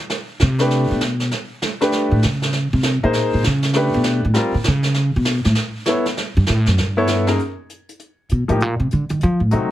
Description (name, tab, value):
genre	jazz piano trio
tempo	198 BPM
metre	4/4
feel	swing 62% on 8ths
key	unclear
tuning	A4 = 440 Hz
part	jazz brush drum kit	drums	0.1-9.6 s	brushed snare drum, hi-hat, snare drum	-24 LUFS	right 2 dB	none
part	upright bass	bass	0.4-9.7 s	F#2 to F3	-17 LUFS	equal	none
part	bright upright piano	melody	0.6-9.7 s	F#2 to C#5	-19 LUFS	left 1 dB	none
room	light reverb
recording	heavily compressed radio sound, multiband compression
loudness	-16 LUFS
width	side -13 dB against mid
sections	0.0-7.4 A section; 7.4-9.7 A section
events	upright bass solo 0.0-9.7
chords	0.1 C5; 1.3 Gadd9; 2.5 Bbm11; 3.7 A9sus4; 4.4 Bbm69; 5.0 Aadd9 (rootless); 6.2 C#m7; 7.4 N.C.; 8.6 Cm7